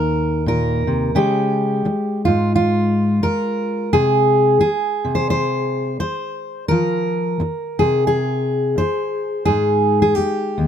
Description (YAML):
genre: folk, solo fingerstyle acoustic guitar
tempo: 86 BPM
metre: 4/4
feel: swing 59% on 8ths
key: unclear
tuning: A4 = 440 Hz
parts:
  - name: fingerpicked steel-string acoustic guitar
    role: solo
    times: 0.0-10.7 s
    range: Eb2 to C5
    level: -16 LUFS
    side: equal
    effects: none
room: little or no reverb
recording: close, detailed microphones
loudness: -16 LUFS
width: side -8 dB against mid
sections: 0.0-10.7 A section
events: none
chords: 0.0 Eb5; 1.2 Db; 3.9 N.C.; 6.7 Fm; 9.5 Ab5